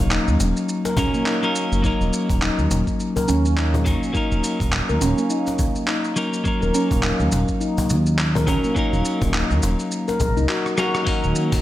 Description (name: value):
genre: organic downtempo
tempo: 104 BPM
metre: 4/4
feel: swing 58% on 16ths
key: Eb minor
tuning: A4 = 440 Hz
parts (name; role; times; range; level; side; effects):
- clean electric guitar; accompaniment; 0.0-11.6 s; Gb3 to Bb4; -24 LUFS; left 1 dB; sidechain pumping, digital delay
- smooth gliding synth bass; bass; 0.0-11.6 s; Eb1 to Eb2; -21 LUFS; equal; tube saturation, sidechain pumping
- handpan; arpeggios; 0.1-11.2 s; Bb3 to Bb4; -24 LUFS; equal; low-pass filter, digital delay
- dusty soul sampler-style drum kit; drums; 0.1-11.6 s; congas, handclaps, hi-hat, rim click, shaker; -27 LUFS; equal; none
- cajon; percussion; 0.4-11.6 s; none; -30 LUFS; left 1 dB; none
- electronic kick drum; drums; 1.0-11.6 s; none; -25 LUFS; equal; none
- warm analog pad; sustained chords; 11.1-11.6 s; Eb3 to Bb3; -25 LUFS; right 2 dB; chorus, vintage 12-bit sampler grit, sidechain pumping
room: light reverb, digital ambience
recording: none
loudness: -18 LUFS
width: side -14 dB against mid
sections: 0.0-11.6 A section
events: filter sweep on handpan 0.0-11.6; drum fill 10.6-11.1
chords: 0.0 Ebm7